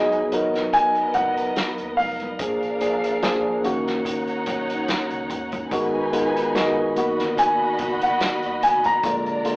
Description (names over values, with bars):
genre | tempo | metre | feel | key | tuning
lush 1970s-style soul | 72 BPM | 4/4 | swing 54% on 16ths | unclear | A4 = 440 Hz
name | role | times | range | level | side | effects
warm baby grand piano | melody | 0.0-9.6 s | Eb5 to A#5 | -21 LUFS | equal | none
warm studio violin section | second line | 0.0-9.6 s | B3 to B5 | -28 LUFS | equal | none
tine electric piano | accompaniment | 0.0-9.6 s | D3 to A#4 | -24 LUFS | equal | medium stereo tremolo
vintage muted fingered electric bass | bass | 0.0-9.6 s | F1 to D#2 | -46 LUFS | equal | none
vintage drum kit | drums | 0.1-9.6 s | hi-hat, kick drum, snare drum | -29 LUFS | equal | none
congas | percussion | 0.5-9.3 s | none | -40 LUFS | equal | none
room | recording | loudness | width
moderate studio reverb, RT60 0.5 s | rough rehearsal-room recording, AM radio sound | -20 LUFS | side -24 dB against mid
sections
0.0-9.6 A section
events
none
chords
0.3 Bmaj7; 2.4 Bb7; 3.6 Ebm7/Bb; 5.7 Abm7; 7.0 Bmaj7; 9.0 Bb7